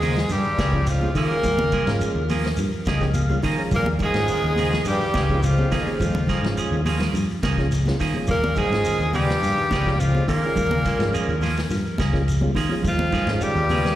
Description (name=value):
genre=afrobeat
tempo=105 BPM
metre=4/4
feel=straight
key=Eb mixolydian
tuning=A4 = 438 Hz
part: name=edgy alto saxophone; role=melody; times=0.0-14.0 s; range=F4 to Bb4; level=-26 LUFS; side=equal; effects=plate reverb, slapback echo, tape echo
part: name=growling tenor saxophone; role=second line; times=0.0-14.0 s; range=F3 to Bb3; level=-32 LUFS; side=right 1 dB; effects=plate reverb, slapback echo
part: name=muted trombone section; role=second line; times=0.0-14.0 s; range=F2 to Bb2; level=-32 LUFS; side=left 3 dB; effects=plate reverb, slapback echo
part: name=electric guitar at the edge of break-up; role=arpeggios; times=0.0-14.0 s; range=Db3 to Ab3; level=-30 LUFS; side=left 4 dB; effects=ensemble chorus, plate reverb, slapback echo
part: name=clean electric guitar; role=stabs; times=0.0-14.0 s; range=F3 to Ab4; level=-30 LUFS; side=right 7 dB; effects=plate reverb, slapback echo
part: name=fingered electric bass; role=bass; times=0.0-13.9 s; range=Db2 to Eb3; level=-23 LUFS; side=equal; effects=none
part: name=vintage drum kit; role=drums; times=0.0-14.0 s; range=hi-hat, kick drum, ride cymbal, snare drum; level=-30 LUFS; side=equal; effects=none
part: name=congas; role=percussion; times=0.0-14.0 s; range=none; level=-30 LUFS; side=right 1 dB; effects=none
part: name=shekere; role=percussion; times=0.0-14.0 s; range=none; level=-34 LUFS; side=equal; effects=none
part: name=mellow tonewheel organ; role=accompaniment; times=0.7-13.6 s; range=Ab3 to Bb5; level=-31 LUFS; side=equal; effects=chorus vibrato, slow rotary speaker, plate reverb, slapback echo
room=light reverb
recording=live gig heard through the venue's PA, recital hall reverb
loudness=-19 LUFS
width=side -13 dB against mid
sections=0.0-14.0 A section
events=tonewheel organ fill 2.6-3.7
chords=0.0 Eb9sus4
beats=0.31 0.88 | 1.45 2.02 2.59 3.16 | 3.73 4.30 4.87 5.44 | 6.01 6.58 7.15 7.72 | 8.29 8.86 9.43 9.99 | 10.56 11.13 11.70 12.27 | 12.84 13.41